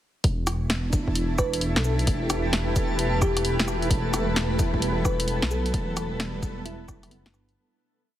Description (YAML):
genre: future garage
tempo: 131 BPM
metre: 4/4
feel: swing 65% on 16ths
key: E minor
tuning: A4 = 443 Hz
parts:
  - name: granular cloud pad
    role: sustained chords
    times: 0.9-7.6 s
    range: B3 to B4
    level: -31 LUFS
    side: equal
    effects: built-in reverb, sidechain pumping
  - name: dark detuned saw bass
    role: bass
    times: 0.2-7.6 s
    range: E1 to B1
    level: -28 LUFS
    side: equal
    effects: none
  - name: deep house drum kit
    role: drums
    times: 0.2-7.6 s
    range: cabasa, hi-hat, rim click, snare drum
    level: -29 LUFS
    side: equal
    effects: none
  - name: electronic kick drum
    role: drums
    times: 0.2-7.0 s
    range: none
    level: -27 LUFS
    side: equal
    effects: none
  - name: backwards swelling texture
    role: texture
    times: 1.1-7.6 s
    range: A3 to A4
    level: -34 LUFS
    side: equal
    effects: built-in reverb
  - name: bright tine electric piano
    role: accompaniment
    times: 0.7-7.9 s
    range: F#3 to A4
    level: -35 LUFS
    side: right 2 dB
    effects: sidechain pumping, analog delay
  - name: bell-like FM electric piano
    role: melody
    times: 1.4-7.3 s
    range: E4 to B4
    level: -33 LUFS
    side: left 1 dB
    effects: chorus, phaser, tape echo
room: light reverb, digital ambience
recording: heavily compressed radio sound, multiband compression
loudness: -22 LUFS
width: side -12 dB against mid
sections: 0.2-7.6 chorus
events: fade-out 5.1-7.6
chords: 0.2 Em; 3.9 Asus2/E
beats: | 0.24 0.70 1.16 1.61 | 2.07 2.53 2.99 3.45 | 3.90 4.36 4.82 5.28 | 5.74 6.20 6.65 7.11